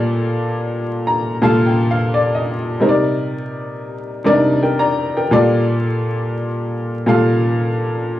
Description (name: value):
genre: hip hop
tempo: 85 BPM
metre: 4/4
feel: swing 57% on 16ths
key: unclear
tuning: A4 = 440 Hz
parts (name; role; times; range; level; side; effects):
- warm upright piano; solo; 0.0-8.2 s; Bb2 to Bb5; -15 LUFS; left 1 dB; tape echo
room: moderate studio reverb, RT60 0.5 s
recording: worn, warbling old tape, cassette tape, vinyl crackle, warbly pitch drift, small room ambience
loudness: -15 LUFS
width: side -13 dB against mid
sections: 0.0-8.2 A section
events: none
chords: 0.0 Gm7/Bb; 2.8 Cm9; 5.3 Gm7/Bb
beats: | 0.01 0.72 1.42 2.13 | 2.83 3.54 4.25 4.95 | 5.66 6.36 7.07 7.78